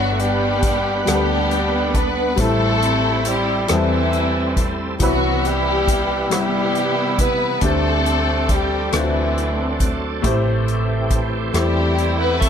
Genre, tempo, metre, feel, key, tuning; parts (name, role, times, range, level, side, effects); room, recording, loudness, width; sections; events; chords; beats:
slow gospel; 46 BPM (dotted quarters); 6/8; straight; A4 = 441 Hz
bright tenor saxophone; melody; 0.0-12.5 s; E3 to B3; -24 LUFS; right 2 dB
warm studio string section; melody; 0.0-12.5 s; G3 to B4; -22 LUFS; left 2 dB
clear upright piano; accompaniment; 0.0-12.5 s; G2 to F#5; -24 LUFS; left 3 dB
bright tonewheel organ; sustained chords; 0.0-12.5 s; C3 to F#5; -27 LUFS; right 4 dB; slow rotary speaker, overdrive, chorus vibrato
hollow-body short-scale fingered electric bass; bass; 0.0-12.5 s; G1 to E2; -23 LUFS; equal
natural country drum kit; drums; 0.2-12.5 s; hi-hat, kick drum, rim click; -22 LUFS; equal
light reverb; -16 LUFS; side -8 dB against mid
0.0-12.5 A section
0.0 Gmaj7; 2.4 Am7; 5.0 Cmaj7; 7.6 D7sus4; 8.9 D7; 10.2 Am7
1.07 | 2.38 3.69 | 5.00 6.31 | 7.62 8.93 | 10.23 11.54